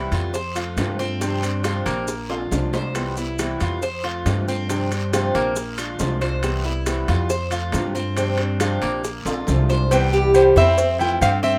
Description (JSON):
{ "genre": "latin, Cuban son and guajira", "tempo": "138 BPM", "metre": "4/4", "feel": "straight", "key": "C major", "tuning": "A4 = 441 Hz", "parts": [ { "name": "fingerpicked swing-style acoustic guitar", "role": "accompaniment", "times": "0.0-11.6 s", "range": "C3 to G4", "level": "-30 LUFS", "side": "equal", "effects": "none" }, { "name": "Cuban tres", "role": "arpeggios", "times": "0.0-11.6 s", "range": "Bb3 to C5", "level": "-27 LUFS", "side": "equal", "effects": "none" }, { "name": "upright bass", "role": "bass", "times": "0.0-11.6 s", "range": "Bb1 to G2", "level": "-26 LUFS", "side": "equal", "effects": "none" }, { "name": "bongos and cowbell", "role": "percussion", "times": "0.1-11.4 s", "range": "none", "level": "-30 LUFS", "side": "equal", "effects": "none" }, { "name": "guiro", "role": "percussion", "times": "0.1-11.6 s", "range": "none", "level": "-41 LUFS", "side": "equal", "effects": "none" }, { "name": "maracas", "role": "percussion", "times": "0.1-11.6 s", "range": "none", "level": "-38 LUFS", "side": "equal", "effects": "none" }, { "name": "timbales and agogo bells", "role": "percussion", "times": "0.1-11.4 s", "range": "none", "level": "-32 LUFS", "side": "equal", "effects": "none" }, { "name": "nylon-string guitar", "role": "melody", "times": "9.9-11.6 s", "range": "B4 to G5", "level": "-21 LUFS", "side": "equal", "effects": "none" }, { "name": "growling trumpet", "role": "second line", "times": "9.9-11.6 s", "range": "G3 to E4", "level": "-33 LUFS", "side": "equal", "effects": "none" } ], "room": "light reverb", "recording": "none", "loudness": "-21 LUFS", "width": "mono", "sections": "0.0-9.9 A section; 9.9-11.6 B section", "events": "drum fill 2.3-3.0, 9.3-9.9", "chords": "0.3 Fmaj7; 1.2 G7sus4; 2.1 Bb7; 3.0 Cmaj7; 3.8 Fmaj7; 4.7 G7sus4; 5.6 Bb7; 6.4 Cmaj7; 7.3 Fmaj7; 8.2 G7sus4; 9.0 Bb7; 9.9 Cmaj7; 10.8 Fmaj7" }